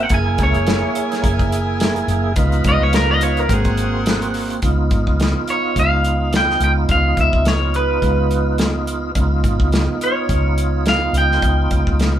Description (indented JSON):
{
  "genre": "straight-eighth soul blues",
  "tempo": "106 BPM",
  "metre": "4/4",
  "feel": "swing 56% on 16ths",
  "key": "Db mixolydian",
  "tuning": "A4 = 440 Hz",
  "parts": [
    { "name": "electric guitar at the edge of break-up", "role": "melody", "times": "0.0-12.2 s", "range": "Ab4 to Ab5", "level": "-20 LUFS", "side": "equal", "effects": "none" },
    { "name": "tonewheel organ", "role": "accompaniment", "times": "0.0-12.2 s", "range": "Bb3 to Ab4", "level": "-22 LUFS", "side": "right 4 dB", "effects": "slow rotary speaker, overdrive, chorus vibrato" },
    { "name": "bright horn section", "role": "sustained chords", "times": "0.0-4.6 s", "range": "Bb4 to Ab5", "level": "-26 LUFS", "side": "right 1 dB", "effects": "none" },
    { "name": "vintage muted fingered electric bass", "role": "bass", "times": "0.0-12.2 s", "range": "Gb1 to Db2", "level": "-18 LUFS", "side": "equal", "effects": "none" },
    { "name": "warm soul drum kit", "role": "drums", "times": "0.1-12.1 s", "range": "hi-hat, kick drum, snare drum", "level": "-21 LUFS", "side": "equal", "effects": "none" }
  ],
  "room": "moderate studio reverb, RT60 0.8 s",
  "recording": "band playing live in one room",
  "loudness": "-15 LUFS",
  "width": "side -11 dB against mid",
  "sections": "0.0-4.6 A section; 4.6-12.2 B section",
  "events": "clean electric guitar solo 0.0-4.6",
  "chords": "0.1 Gb9; 2.4 Db9; 3.5 Ab9; 4.6 Db9"
}